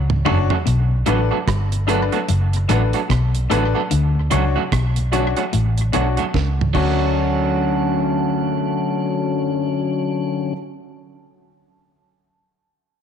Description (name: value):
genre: roots reggae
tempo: 74 BPM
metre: 4/4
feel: swing 60% on 16ths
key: D major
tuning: A4 = 440 Hz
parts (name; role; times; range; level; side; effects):
- clean electric guitar; riff; 0.0-6.6 s; F#2 to D3; -27 LUFS; left 6 dB; none
- vintage muted fingered electric bass; bass; 0.0-10.5 s; F#1 to D2; -19 LUFS; equal; tube saturation
- mellow tonewheel organ; accompaniment; 0.1-10.5 s; D2 to C#4; -25 LUFS; left 8 dB; slow rotary speaker
- deep reggae drum kit; drums; 0.1-7.0 s; crash cymbal, hi-hat, kick drum, rim click, snare drum, toms; -25 LUFS; right 4 dB; tape echo
- warm baby grand piano; stabs; 0.2-10.5 s; D4 to C#5; -25 LUFS; left 10 dB; none
- electric guitar at the edge of break-up; accompaniment; 0.3-10.6 s; F#3 to F#4; -24 LUFS; right 10 dB; dub echo
room: moderate echo chamber reverb, RT60 2.0 s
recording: 1960s-style stereo with parts hard left and right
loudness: -17 LUFS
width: side -8 dB against mid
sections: 0.7-7.2 A section; 7.2-10.4 B section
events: drum fill 0.0-0.7, 6.3-7.2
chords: 0.0 Dmaj7; 0.7 Bm7; 3.9 Dmaj7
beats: | 0.66 1.47 2.28 3.10 | 3.91 4.72 5.53 6.34 | 7.15 7.96 8.78 9.59